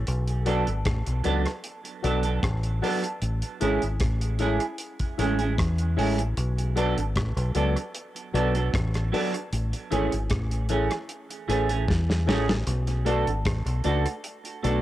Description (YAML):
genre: roots reggae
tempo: 76 BPM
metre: 4/4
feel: straight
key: B dorian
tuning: A4 = 441 Hz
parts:
  - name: deep dub fingered electric bass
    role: bass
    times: 0.0-14.8 s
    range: G#1 to E2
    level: -26 LUFS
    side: equal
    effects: none
  - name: damped 70s drum kit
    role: drums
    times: 0.1-14.8 s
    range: hi-hat, kick drum, rim click, snare drum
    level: -30 LUFS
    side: equal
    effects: cassette tape, tape echo
  - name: semi-hollow electric guitar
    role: accompaniment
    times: 0.5-14.8 s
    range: E3 to A4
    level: -29 LUFS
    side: right 5 dB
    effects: lush chorus, cassette tape, tape echo
  - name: warm concert grand piano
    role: stabs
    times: 0.5-14.8 s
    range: E4 to D5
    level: -32 LUFS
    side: left 8 dB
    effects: cassette tape
room: light reverb, studio reverb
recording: home recording on cassette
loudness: -23 LUFS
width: side -14 dB against mid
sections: 0.1-14.8 A section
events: drum fill 11.9-12.7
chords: 0.1 Bm7; 3.2 Amaj7; 6.4 Bm7; 9.5 Amaj7; 12.7 Bm7